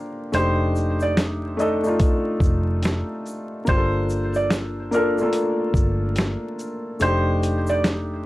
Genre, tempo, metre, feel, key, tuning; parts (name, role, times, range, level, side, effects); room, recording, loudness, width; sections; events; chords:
lo-fi hip hop; 72 BPM; 4/4; swing 63% on 16ths; A4 = 440 Hz
felt-muted upright piano; accompaniment; 0.0-8.3 s; A3 to C5; -24 LUFS; left 1 dB; cassette tape
felt-muted upright piano; melody; 0.3-7.8 s; Bb4 to Eb5; -25 LUFS; right 1 dB
vintage muted fingered electric bass; bass; 0.3-8.3 s; F1 to G1; -25 LUFS; equal; tube saturation
dusty soul sampler-style drum kit; drums; 0.3-8.1 s; finger snaps, hi-hat, kick drum, shaker, snare drum; -21 LUFS; equal; overdrive
egg shaker; percussion; 0.3-8.1 s; -48 LUFS; left 1 dB
light reverb; dry, gritty hardware recording, vinyl crackle; -19 LUFS; side -17 dB against mid
0.0-8.3 A section
kick muted 7.0-8.3
0.3 F13; 3.7 Gm9; 7.0 F13